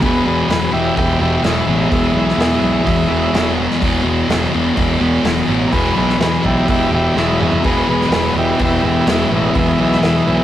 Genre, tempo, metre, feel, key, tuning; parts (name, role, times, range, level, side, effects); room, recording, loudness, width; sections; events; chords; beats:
garage rock duo or trio; 126 BPM; 4/4; straight; E major; A4 = 440 Hz
overdriven combo organ; melody; 0.0-10.4 s; G#3 to B4; -19 LUFS; equal
thick fuzz guitar; riff; 0.0-10.4 s; E2 to E3; -16 LUFS; left 1 dB; distortion
fuzz picked electric bass; bass; 0.0-10.4 s; E1 to E2; -21 LUFS; equal; overdrive
vintage drum kit; drums; 0.0-10.1 s; hi-hat, kick drum, snare drum, toms; -22 LUFS; equal
combo organ; sustained chords; 7.6-10.4 s; E4 to B4; -26 LUFS; equal
moderate stone room reverb, RT60 0.9 s; rough rehearsal-room recording, tube saturation; -13 LUFS; side -12 dB against mid
0.0-10.4 A section
drum fill 7.2-7.6
0.0 E
| 0.02 0.49 0.96 1.44 | 1.91 2.39 2.86 3.34 | 3.81 4.29 4.77 5.24 | 5.72 6.20 6.68 7.16 | 7.63 8.11 8.59 9.07 | 9.55 10.03